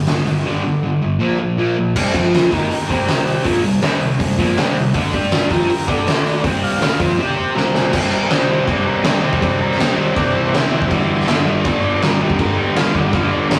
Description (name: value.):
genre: garage rock duo or trio.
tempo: 161 BPM.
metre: 4/4.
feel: straight.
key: unclear.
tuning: A4 = 440 Hz.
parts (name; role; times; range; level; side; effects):
fuzz guitar; riff; 0.0-13.6 s; G2 to C5; -20 LUFS; equal; distortion.
oversized low-tuned drum kit; drums; 0.1-13.6 s; crash cymbal, hi-hat, kick drum, snare drum; -20 LUFS; equal; none.
overdriven combo organ; melody; 2.5-13.6 s; E3 to F5; -28 LUFS; equal; none.
room: moderate stone room reverb, RT60 1.4 s.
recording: rough rehearsal-room recording, tube saturation.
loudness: -17 LUFS.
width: mono.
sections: 0.0-2.0 A section; 2.0-7.9 B section; 7.9-13.6 C section.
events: drum fill 7.6-7.9.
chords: 0.0 G5; 1.2 Bb5; 2.0 C5; 2.1 F5; 2.5 C5; 4.9 D5; 5.1 G5; 5.5 D5; 6.4 C5; 6.8 D5; 7.2 C5; 10.9 G5.